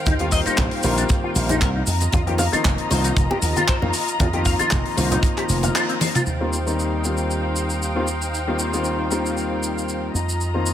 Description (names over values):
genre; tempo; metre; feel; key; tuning
nu-disco, nu disco; 116 BPM; 4/4; swing 54% on 16ths; Eb major; A4 = 441 Hz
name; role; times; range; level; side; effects
muted studio string section; sustained chords; 0.0-10.7 s; Eb3 to Bb5; -28 LUFS; equal; sidechain pumping
electric guitar with an envelope filter; riff; 0.1-6.2 s; C4 to F5; -26 LUFS; left 3 dB; ensemble chorus, ping-pong delay
slap bass with an envelope filter; bass; 0.1-10.7 s; F1 to F2; -24 LUFS; equal; none
kick drum; drums; 0.1-5.3 s; none; -21 LUFS; right 1 dB; none
tight funk drum kit; drums; 0.1-10.7 s; handclaps, hi-hat, shaker, toms; -26 LUFS; equal; none
congas; percussion; 0.1-6.1 s; none; -30 LUFS; right 3 dB; none
clear concert grand piano; accompaniment; 0.2-10.7 s; Eb3 to F4; -25 LUFS; left 2 dB; sidechain pumping, low-pass filter, ping-pong delay
room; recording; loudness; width
light reverb, studio reverb; none; -18 LUFS; side -10 dB against mid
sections
0.0-6.3 A section; 6.3-10.7 B section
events
band accent 5.8; drum fill 6.0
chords
0.0 Eb69; 1.9 F7sus4; 6.3 Eb69; 10.1 F7sus4